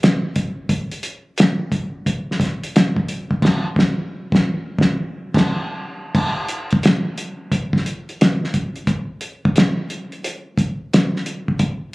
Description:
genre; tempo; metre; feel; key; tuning
R&B; 88 BPM; 4/4; swing 64% on 16ths; none; none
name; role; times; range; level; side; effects
cloth-damped thuddy drum kit; drums; 0.0-11.8 s; crash cymbal, hi-hat, kick drum, snare drum; -18 LUFS; equal; none
room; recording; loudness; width
wet plate reverb, RT60 2.0 s; recorded on a phone in the room, club reverb, compression; -17 LUFS; side -22 dB against mid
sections
0.0-6.1 A section; 6.1-11.9 B section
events
band accent 3.4-6.1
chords
none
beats
0.01 | 0.69 1.37 2.06 2.74 | 3.42 4.10 4.78 5.46 | 6.15 6.83 7.51 8.19 | 8.87 9.56 10.24 10.92 | 11.60

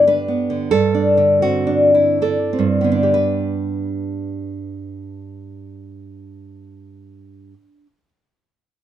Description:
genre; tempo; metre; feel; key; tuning
romantic piece for solo classical guitar; 61-98 BPM; 3/4; rubato; G major; A4 = 440 Hz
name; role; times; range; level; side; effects
nylon-string guitar; solo; 0.0-8.1 s; G2 to B4; -16 LUFS; equal; none
room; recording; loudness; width
light reverb; dark, warm production; -15 LUFS; side -11 dB against mid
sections
0.0-3.1 A section; 3.1-8.0 B section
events
slowing down 0.0-3.1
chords
0.0 G; 0.7 D7/G; 3.1 G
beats
0.06 | 0.70 1.40 2.21 | 3.13 3.96 4.76 | 5.56 6.36 7.15

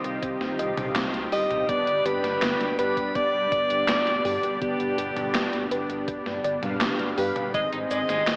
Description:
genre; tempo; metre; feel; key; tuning
synthwave; 82 BPM; 4/4; straight; unclear; A4 = 439 Hz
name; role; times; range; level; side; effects
breathy alto saxophone; melody; 0.0-8.4 s; G4 to Eb5; -26 LUFS; equal; tape echo
lush unison pad; sustained chords; 0.0-8.4 s; B2 to Ab4; -33 LUFS; equal; chorus, sidechain pumping
thumb-piano-like synth pluck; arpeggios; 0.0-7.5 s; B3 to Eb5; -32 LUFS; equal; chorus, tape echo
mellow synth brass; stabs; 0.0-8.4 s; B3 to F5; -30 LUFS; equal; chorus
dark detuned saw bass; bass; 0.0-8.4 s; F1 to G2; -39 LUFS; equal; tube saturation
gated 80s digital drum machine; drums; 0.0-8.4 s; cabasa, handclaps, hi-hat, snare drum, toms; -29 LUFS; equal; gated reverb, gated reverb snare, overdrive
electronic kick drum; drums; 0.2-7.7 s; none; -37 LUFS; equal; overdrive
electric guitar at the edge of break-up; riff; 7.5-8.2 s; Ab3 to Eb4; -31 LUFS; equal; lush chorus
room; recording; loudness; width
moderate lush hall reverb, RT60 3.1 s; AM radio sound; -22 LUFS; side -31 dB against mid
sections
0.0-8.4 A section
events
none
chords
0.0 Cm; 1.7 G; 7.5 Ab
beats
0.23 0.96 | 1.69 2.42 3.15 3.88 | 4.62 5.35 6.08 6.81 | 7.54 8.28

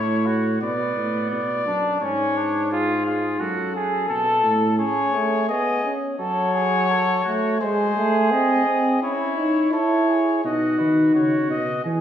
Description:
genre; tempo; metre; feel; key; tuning
classical, imitative canzona for brass ensemble; 86 BPM; 4/4; straight; F# minor; A4 = 440 Hz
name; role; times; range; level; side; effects
mellow trumpet; melody; 0.0-12.0 s; G#4 to D#5; -25 LUFS; left 5 dB; none
mellow trumpet; second line; 0.0-12.0 s; B3 to A4; -24 LUFS; right 1 dB; none
clear tuba; bass; 0.0-4.8, 10.4-12.0 s; F#2 to E3; -25 LUFS; right 1 dB; none
warm euphonium; accompaniment; 4.8-12.0 s; F#3 to E4; -21 LUFS; right 1 dB; none
room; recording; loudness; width
wet recital hall reverb, RT60 1.5 s; recorded in a church or concert hall; -19 LUFS; side -10 dB against mid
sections
0.0-10.4 A section; 10.4-12.0 B section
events
none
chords
0.0 F#m/A; 0.6 Bm; 2.0 C#/G#; 3.4 F#m; 4.8 C#5; 6.2 F#m; 7.6 G#; 9.0 C#m; 10.4 B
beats
0.62 1.32 | 2.02 2.72 3.41 4.10 | 4.80 5.50 6.20 6.90 | 7.61 8.32 9.03 9.73 | 10.45 11.15 11.85

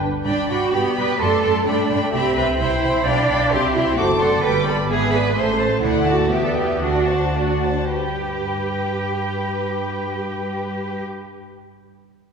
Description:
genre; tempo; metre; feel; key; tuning
quick classical-period movement for string orchestra; 102-132 BPM; 2/4; straight; G major; A4 = 440 Hz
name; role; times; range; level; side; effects
dark studio violin section; second line; 0.0-11.0 s; A4 to B5; -26 LUFS; left 1 dB; none
warm chamber cello section; bass; 0.0-11.0 s; D4 to D5; -22 LUFS; right 3 dB; none
warm chamber double bass section; bass; 0.0-11.0 s; F#1 to G2; -25 LUFS; right 2 dB; none
dark chamber violin section; melody; 0.3-11.0 s; E5 to D6; -28 LUFS; left 4 dB; none
rich chamber viola section; accompaniment; 0.7-11.0 s; G3 to G4; -25 LUFS; left 1 dB; none
room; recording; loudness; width
wet concert hall reverb, RT60 2.0 s; recorded in a church or concert hall; -17 LUFS; side -6 dB against mid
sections
0.3-7.9 A section; 7.9-10.2 B section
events
slowing down 5.4-7.9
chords
0.3 G; 1.2 D7/F#; 1.7 G; 2.1 Cmaj7; 3.1 G7/B; 3.5 C; 4.0 D7/F#; 4.4 G; 4.9 E7/G#; 5.4 Am; 5.8 D; 6.3 Em7; 6.8 D7; 7.9 G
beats
| 0.26 0.73 | 1.20 1.66 | 2.13 2.59 | 3.05 3.51 | 3.97 4.43 | 4.89 5.35 | 5.82 6.31 | 6.81 7.34 | 7.91 8.49 | 9.07 9.65

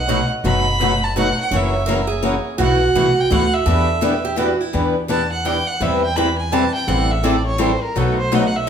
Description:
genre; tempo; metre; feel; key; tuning
acoustic string swing (jazz manouche); 168 BPM; 3/4; swing 61% on 8ths; E minor; A4 = 440 Hz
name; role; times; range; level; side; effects
warm violin; melody; 0.0-8.7 s; A4 to B5; -22 LUFS; right 2 dB; none
picked steel-string acoustic guitar; second line; 0.0-4.7 s; E4 to D#5; -22 LUFS; right 5 dB; none
upright bass; bass; 0.0-8.7 s; F#1 to E2; -22 LUFS; equal; none
picked steel-string acoustic guitar; accompaniment; 0.1-8.7 s; B2 to B4; -21 LUFS; left 4 dB; none
picked swing-style acoustic guitar; accompaniment; 0.1-8.7 s; B2 to B4; -23 LUFS; right 3 dB; none
room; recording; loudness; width
wet large studio reverb, RT60 0.9 s; band playing live in one room; -15 LUFS; side -8 dB against mid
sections
0.0-4.7 A section; 4.7-8.7 B section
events
violin solo 4.7-8.7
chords
0.0 B7; 1.5 F#7; 2.6 B7sus4; 3.7 Em7; 5.8 Cmaj7/E; 6.9 Am7; 8.0 B7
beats
0.08 | 0.44 0.80 1.15 | 1.51 1.87 2.23 | 2.59 2.95 3.30 | 3.66 4.02 4.38 | 4.74 5.09 5.45 | 5.81 6.17 6.53 | 6.88 7.24 7.60 | 7.96 8.31 8.67

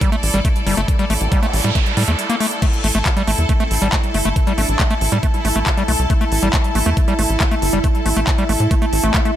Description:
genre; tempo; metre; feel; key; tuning
psychedelic trance; 138 BPM; 4/4; straight; unclear; A4 = 438 Hz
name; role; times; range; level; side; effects
overdriven acid bass; riff; 0.0-9.3 s; G3 to Bb3; -22 LUFS; moving between left 4 dB and right 4 dB; auto-pan, sidechain pumping, digital delay
big-room dance drum kit; drums; 0.0-9.3 s; crash cymbal, handclaps, hi-hat; -23 LUFS; right 1 dB; small room ambience
electronic kick drum; drums; 0.0-9.2 s; none; -17 LUFS; equal; small room ambience
bright studio string section; texture; 0.0-9.4 s; E4 to A5; -24 LUFS; left 1 dB; sidechain pumping
tight sequencer bass; bass; 0.2-9.1 s; G1 to A2; -19 LUFS; equal; none
noise sweep; sound effects; 1.1-2.6 s; none; -25 LUFS; right 3 dB; none
evolving wavetable pad; sustained chords; 3.3-9.4 s; E4; -25 LUFS; right 3 dB; chorus, built-in reverb, sidechain pumping
metallic wobble bass; second line; 3.6-5.7 s; C4 to E4; -32 LUFS; right 1 dB; none
room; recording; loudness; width
light reverb, digital ambience; none; -15 LUFS; side -11 dB against mid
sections
0.0-9.4 A section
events
noise sweep 1.1-2.6; break 2.2-2.6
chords
0.0 A5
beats
0.01 0.45 | 0.88 1.32 1.75 2.19 | 2.62 3.06 3.49 3.93 | 4.36 4.80 5.23 5.67 | 6.10 6.54 6.97 7.41 | 7.84 8.27 8.71 9.14

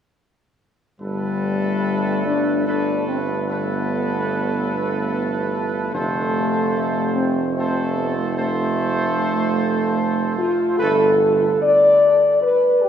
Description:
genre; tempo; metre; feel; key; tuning
classical; 74 BPM; 3/4; straight; G mixolydian; A4 = 440 Hz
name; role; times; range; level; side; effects
clear trumpet section; melody; 1.0-11.1 s; A4 to C5; -26 LUFS; right 1 dB; none
clear trombone section; sustained chords; 1.0-11.1 s; D3 to A3; -28 LUFS; right 3 dB; none
mellow French horn section; sustained chords; 1.0-12.9 s; G3 to D5; -19 LUFS; left 1 dB; none
clear tuba; bass; 1.0-11.5 s; F1 to G1; -25 LUFS; right 3 dB; none
room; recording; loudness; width
wet cathedral reverb, RT60 4.7 s; recorded in a church or concert hall; -17 LUFS; side -9 dB against mid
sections
1.0-12.9 A section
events
none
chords
1.0 Gadd9; 5.9 F; 10.8 Gadd9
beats
| 1.01 1.85 2.67 | 3.49 4.31 5.13 | 5.94 6.76 7.57 | 8.37 9.17 9.98 | 10.79 11.62 12.43

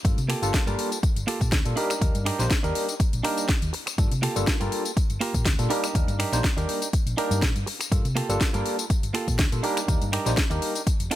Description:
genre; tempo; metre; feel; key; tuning
filtered disco house; 122 BPM; 4/4; swing 54% on 16ths; unclear; A4 = 440 Hz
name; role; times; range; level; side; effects
barky tine electric piano; accompaniment; 0.0-10.7 s; G3 to C5; -31 LUFS; left 1 dB; phaser, sidechain pumping
hollow-body short-scale fingered electric bass; bass; 0.0-11.1 s; F1 to C3; -28 LUFS; equal; sidechain pumping
electronic kick drum; drums; 0.0-11.0 s; none; -24 LUFS; equal; overdrive
house drum kit; drums; 0.0-11.2 s; finger snaps, hi-hat, snare drum, tambourine; -29 LUFS; left 2 dB; overdrive, sidechain pumping on hats, sidechain pumping on perc, sidechain pumping on cymbals
direct-recorded clean electric guitar; riff; 0.3-11.2 s; Bb3 to Bb4; -30 LUFS; right 4 dB; sidechain pumping
room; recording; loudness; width
little or no reverb; none; -22 LUFS; side -14 dB against mid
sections
0.0-11.2 A section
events
none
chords
0.0 Gm9; 1.8 Ebmaj7; 4.0 Gm9; 5.7 Ebmaj7; 7.9 Gm9; 9.6 Ebmaj7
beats
| 0.05 0.54 1.03 1.52 | 2.02 2.51 3.00 3.49 | 3.98 4.47 4.96 5.46 | 5.95 6.44 6.93 7.42 | 7.92 8.41 8.90 9.39 | 9.88 10.38 10.87

